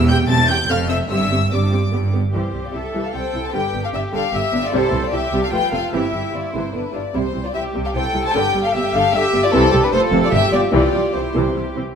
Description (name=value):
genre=quick classical-period movement for string orchestra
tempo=150 BPM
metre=3/4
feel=straight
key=C major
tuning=A4 = 439 Hz
part: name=warm symphonic violin section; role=melody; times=0.0-11.8 s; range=C4 to A6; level=-26 LUFS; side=left 4 dB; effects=none
part: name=clear symphonic cello section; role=bass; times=0.0-11.7 s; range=E2 to A4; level=-24 LUFS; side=right 2 dB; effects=none
part: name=warm studio double bass section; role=bass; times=0.0-11.8 s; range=E1 to C2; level=-23 LUFS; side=right 2 dB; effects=none
part: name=warm symphonic violin section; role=second line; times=0.1-11.8 s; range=A4 to A5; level=-22 LUFS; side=left 3 dB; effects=none
part: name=dark symphonic viola section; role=accompaniment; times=0.1-11.8 s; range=C3 to A4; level=-22 LUFS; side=right 1 dB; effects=none
room=wet scoring stage reverb, RT60 1.7 s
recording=none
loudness=-16 LUFS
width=side -7 dB against mid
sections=0.0-2.3 A section; 2.3-12.0 B section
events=none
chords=0.0 C/E; 0.7 F; 1.1 Gsus4; 1.9 G; 2.3 C; 3.5 G; 4.7 C; 5.5 F; 5.9 C/G; 6.7 G; 7.2 C; 8.3 G; 9.5 C; 9.9 F; 10.3 G7; 10.7 C